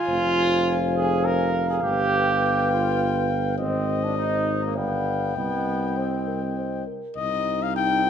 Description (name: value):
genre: classical, brass quintet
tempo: 102 BPM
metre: 3/4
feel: straight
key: C minor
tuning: A4 = 439 Hz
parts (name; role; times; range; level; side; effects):
- mellow trumpet; melody; 0.0-8.1 s; Eb5 to Ab5; -28 LUFS; left 7 dB; none
- brilliant trombone; accompaniment; 0.0-8.1 s; Bb3 to Bb4; -26 LUFS; right 2 dB; none
- mellow flugelhorn; second line; 0.1-8.1 s; Eb4 to F5; -29 LUFS; right 2 dB; none
- mellow French horn; accompaniment; 0.1-8.1 s; Eb4 to Eb5; -31 LUFS; left 6 dB; none
- mellow tuba; bass; 0.1-8.1 s; F1 to C2; -26 LUFS; right 2 dB; none
room: wet recital hall reverb, RT60 1.4 s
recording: none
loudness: -21 LUFS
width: side -8 dB against mid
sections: 0.0-7.2 A section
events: none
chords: 0.1 Fm; 1.8 G7; 3.6 Ab; 4.8 G7; 5.4 Cm